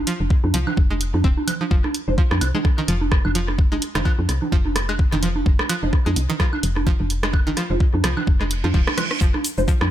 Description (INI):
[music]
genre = minimal techno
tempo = 128 BPM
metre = 4/4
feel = swing 57% on 16ths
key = F minor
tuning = A4 = 440 Hz
[part]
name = woody FM bass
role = bass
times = 0.0-9.9 s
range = Eb1 to F2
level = -23 LUFS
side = equal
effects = tube saturation, sidechain pumping
[part]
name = string-like resonator pluck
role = riff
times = 0.1-9.7 s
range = Eb3 to C4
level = -28 LUFS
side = equal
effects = chorus, sidechain pumping, dub echo
[part]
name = punchy analog drum machine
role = drums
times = 0.1-9.6 s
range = hi-hat, rim click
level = -27 LUFS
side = equal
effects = overdrive, studio reverb
[part]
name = electronic congas, woodblock and rim click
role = percussion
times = 0.2-9.9 s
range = none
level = -25 LUFS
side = right 3 dB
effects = overdrive, studio reverb, ping-pong delay
[part]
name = electronic kick drum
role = drums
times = 0.3-9.8 s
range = none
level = -18 LUFS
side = equal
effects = overdrive, studio reverb
[part]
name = filtered dub chord stab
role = stabs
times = 2.1-9.6 s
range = Ab3 to C5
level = -29 LUFS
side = left 1 dB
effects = phaser, ensemble chorus, ping-pong delay
[part]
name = reverse cymbal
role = sound effects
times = 8.5-9.2 s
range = none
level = -29 LUFS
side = right 6 dB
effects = none
[part]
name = tube shaker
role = percussion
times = 9.2-9.8 s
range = none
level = -30 LUFS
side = left 4 dB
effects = none
[sound]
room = little or no reverb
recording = none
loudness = -18 LUFS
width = side -12 dB against mid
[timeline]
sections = 0.0-9.9 A section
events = reverse cymbal 8.5-9.2; drum fill 8.9-9.2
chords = none